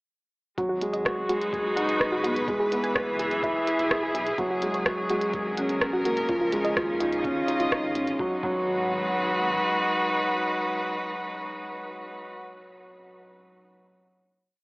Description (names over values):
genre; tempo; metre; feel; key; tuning
piano and strings electronica; 126 BPM; 4/4; straight; G# minor; A4 = 439 Hz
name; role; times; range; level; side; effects
rich string quartet; sustained chords; 0.6-12.4 s; C#3 to D#5; -28 LUFS; equal; sidechain pumping
soft round pluck; arpeggios; 0.6-8.6 s; E#4 to C#6; -32 LUFS; equal; chorus, sidechain pumping, digital delay
felt-muted upright piano; riff; 0.6-14.5 s; E#3 to B4; -28 LUFS; equal; digital delay
dark detuned saw bass; bass; 0.6-9.6 s; E1 to D#2; -43 LUFS; equal; sidechain pumping
electronic kick drum; drums; 0.6-8.6 s; none; -40 LUFS; equal; overdrive
minimal click drum kit; drums; 0.6-8.2 s; hi-hat, rim click; -30 LUFS; equal; none
room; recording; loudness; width
moderate huge ambient reverb, RT60 5.3 s; AM radio sound; -24 LUFS; side -28 dB against mid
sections
0.6-8.2 drop; 8.2-12.0 final chord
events
drop 0.6-8.2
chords
0.6 G#m7; 2.5 E; 4.4 F#add9; 6.3 C#add9; 8.2 G#m7